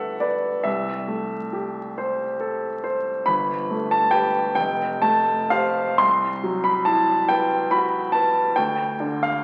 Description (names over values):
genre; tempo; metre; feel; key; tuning
classical, impressionist solo piano; 46 BPM (dotted quarters); 6/8; rubato; unclear; A4 = 440 Hz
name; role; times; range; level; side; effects
clear baby grand piano; solo; 0.0-9.4 s; F1 to C6; -22 LUFS; equal; none
room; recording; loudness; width
wet scoring stage reverb, RT60 1.6 s; very old 78 rpm record, vinyl crackle; -22 LUFS; mono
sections
0.0-9.4 A section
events
none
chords
0.0 Gadd9; 0.7 C6; 3.3 Gadd9; 4.6 Fadd9; 6.0 Cmaj7#11; 8.6 N.C.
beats
| 0.66 1.98 | 3.28 4.58 | 6.00 7.29 | 8.57